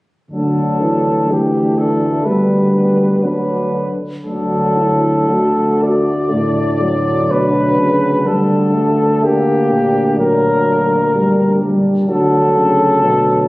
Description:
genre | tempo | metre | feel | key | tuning
classical, hymn-like piece for brass band | 62 BPM | 4/4 | rubato | D major | A4 = 440 Hz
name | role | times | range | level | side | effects
dark cornet | melody | 0.3-13.5 s | G4 to D5 | -16 LUFS | left 1 dB | none
mellow French horn section | second line | 0.3-13.5 s | B3 to F#4 | -22 LUFS | right 1 dB | none
warm euphonium | accompaniment | 0.3-13.5 s | F#3 to Bb3 | -18 LUFS | equal | none
warm trombone | accompaniment | 0.3-13.5 s | A2 to E3 | -22 LUFS | right 1 dB | none
mellow tuba | bass | 0.3-13.5 s | D2 | -19 LUFS | equal | none
room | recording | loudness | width
moderate concert hall reverb, RT60 2.1 s | recorded on a phone in the room, studio reverb, lossy compression artefacts | -12 LUFS | side -20 dB against mid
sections
0.3-4.3 A section; 4.3-13.5 B section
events
none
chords
0.3 D; 2.3 G/D; 4.3 D; 8.3 Gm/D; 12.1 D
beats
| 0.32 1.31 2.26 3.23 | 4.25 5.29 6.32 7.30 | 8.27 9.24 10.19 11.14 | 12.09 13.04

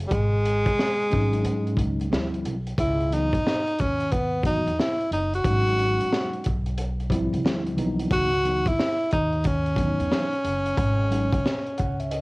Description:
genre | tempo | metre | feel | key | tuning
hip hop, jazz-hop | 90 BPM | 4/4 | swing 65% on 16ths | C# minor | A4 = 440 Hz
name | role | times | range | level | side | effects
upright bass | bass | 0.0-12.2 s | F#1 to G#2 | -27 LUFS | equal | none
crunchy breakbeat drum kit | drums | 0.0-12.2 s | hi-hat, kick drum, snare drum | -27 LUFS | equal | cassette tape
breathy tenor saxophone | melody | 0.1-12.2 s | G3 to F#4 | -25 LUFS | equal | cassette tape
mellow tine electric piano | accompaniment | 1.1-12.2 s | E3 to F#5 | -28 LUFS | equal | medium stereo tremolo, cassette tape
room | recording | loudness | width
light reverb | home recording on cassette, vinyl crackle | -22 LUFS | side -24 dB against mid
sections
0.0-12.2 A section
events
tine electric piano fill 11.4-12.2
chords
0.1 G#7sus4; 2.1 Dm11; 2.8 C#m11; 5.4 G#7sus4; 7.4 Dm11; 8.1 C#m11; 10.8 G#7sus4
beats
| 0.11 0.78 1.45 2.11 | 2.78 3.45 4.11 4.78 | 5.45 6.11 6.78 7.45 | 8.11 8.78 9.45 10.11 | 10.78 11.45 12.11

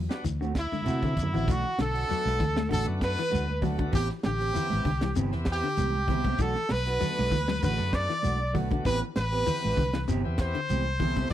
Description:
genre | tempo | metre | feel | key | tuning
afrobeat | 98 BPM | 4/4 | swing 54% on 16ths | unclear | A4 = 440 Hz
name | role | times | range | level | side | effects
semi-hollow electric guitar | arpeggios | 0.0-11.3 s | C3 to A3 | -35 LUFS | left 9 dB | spring reverb
vintage muted fingered electric bass | bass | 0.0-11.3 s | G1 to C3 | -30 LUFS | equal | none
bright tonewheel organ | accompaniment | 0.1-11.3 s | G3 to G4 | -39 LUFS | left 1 dB | overdrive, slow rotary speaker
mellow electric guitar | stabs | 0.1-11.3 s | E3 to G4 | -35 LUFS | right 6 dB | none
tight funk drum kit | drums | 0.1-11.3 s | hi-hat, kick drum, snare drum | -32 LUFS | equal | none
shekere | percussion | 0.1-11.2 s | none | -34 LUFS | left 2 dB | none
congas | percussion | 0.3-11.3 s | none | -34 LUFS | right 4 dB | none
brilliant trumpet | melody | 0.6-11.3 s | E4 to D5 | -31 LUFS | equal | none
raspy alto saxophone | second line | 0.6-11.3 s | E4 to D5 | -35 LUFS | right 3 dB | none
room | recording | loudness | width
little or no reverb | dry, close 1970s-style studio recording | -25 LUFS | side -12 dB against mid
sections
0.0-1.5 A section; 1.5-11.3 B section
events
drum fill 0.7-1.5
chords
0.2 D7; 1.5 Bm7; 3.9 Am9; 6.4 Bm7; 8.9 Am9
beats
0.24 0.86 | 1.48 2.09 2.71 3.32 | 3.94 4.55 5.17 5.78 | 6.40 7.01 7.62 8.24 | 8.85 9.47 10.08 10.70 | 11.31

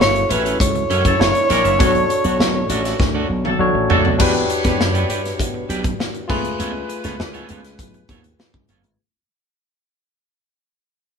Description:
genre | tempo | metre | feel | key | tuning
polished 1980s jazz-funk pop | 100 BPM | 4/4 | straight | unclear | A4 = 440 Hz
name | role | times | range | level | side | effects
breathy alto saxophone | melody | 0.0-3.6 s | B4 to C#5 | -19 LUFS | equal | none
barky tine electric piano | accompaniment | 0.0-9.0 s | A3 to C#5 | -22 LUFS | left 2 dB | overdrive
electric guitar at the edge of break-up | riff | 0.0-8.9 s | A3 to E5 | -26 LUFS | right 4 dB | none
slap bass with an envelope filter | bass | 0.0-9.0 s | F#1 to B2 | -23 LUFS | equal | none
modern studio drum kit | drums | 0.0-9.0 s | crash cymbal, hi-hat, kick drum, snare drum, toms | -21 LUFS | equal | none
warm horn section | second line | 1.1-8.7 s | E3 to C#5 | -26 LUFS | equal | none
room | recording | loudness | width
moderate studio reverb, RT60 0.8 s | band playing live in one room, lossy compression artefacts | -15 LUFS | side -6 dB against mid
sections
0.0-4.2 A section; 4.2-9.0 B section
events
drum fill 3.0-4.2; fade-out 4.2-9.0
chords
0.0 F#m7; 1.2 F#7b13; 1.8 Bm9; 4.2 Em7; 6.3 C#7b13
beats
0.00 0.60 1.20 | 1.80 2.40 3.00 3.60 | 4.20 4.80 5.40 5.99 | 6.59 7.19 7.79 8.39

